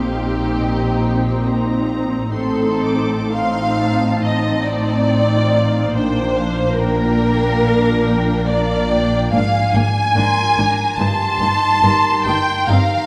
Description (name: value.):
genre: classical, slow romantic movement for symphony orchestra.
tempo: 70 BPM.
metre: 4/4.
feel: rubato.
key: Bb major.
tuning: A4 = 439 Hz.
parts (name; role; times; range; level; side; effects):
muted symphonic violin section; melody; 0.0-13.1 s; Eb5 to D6; -29 LUFS; equal; none.
muted symphonic violin section; second line; 0.0-13.1 s; G4 to A5; -21 LUFS; equal; none.
muted symphonic viola section; accompaniment; 0.0-12.8 s; Bb3 to Eb4; -25 LUFS; equal; none.
concert harp; arpeggios; 0.0-13.1 s; G2 to C5; -26 LUFS; equal; none.
muted symphonic cello section; bass; 0.0-12.8 s; G2 to Bb2; -24 LUFS; equal; none.
muted symphonic double bass section; bass; 0.0-12.8 s; G1 to Bb1; -26 LUFS; equal; none.
room: wet scoring stage reverb, RT60 1.9 s.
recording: none.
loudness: -17 LUFS.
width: mono.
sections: 0.0-13.1 A section.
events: none.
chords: 0.0 Cm7/Bb; 2.3 F7/A; 5.9 Bb; 9.3 Bb7/Ab; 11.0 Eb/G.